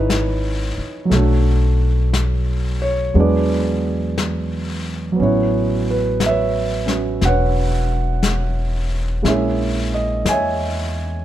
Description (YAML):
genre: jazz ballad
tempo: 59 BPM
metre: 4/4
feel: swing 67% on 8ths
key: unclear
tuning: A4 = 440 Hz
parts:
  - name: warm grand piano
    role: accompaniment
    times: 0.0-11.2 s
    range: E3 to G#5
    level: -20 LUFS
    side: right 2 dB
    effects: none
  - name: upright bass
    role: bass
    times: 0.0-11.2 s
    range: E1 to E2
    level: -20 LUFS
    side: equal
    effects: none
  - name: vintage brush drum kit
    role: drums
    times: 0.1-11.2 s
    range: brushed snare drum, hi-hat, snare drum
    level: -26 LUFS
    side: left 4 dB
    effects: none
room: little or no reverb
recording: dark, warm production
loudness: -16 LUFS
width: side -12 dB against mid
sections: 0.0-11.2 A section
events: none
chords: 0.0 C#m9; 1.1 Bm7; 3.1 E7; 5.2 A69; 9.2 A#m7b5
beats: 0.10 | 1.12 2.13 3.15 4.17 | 5.18 6.20 7.21 8.23 | 9.24 10.26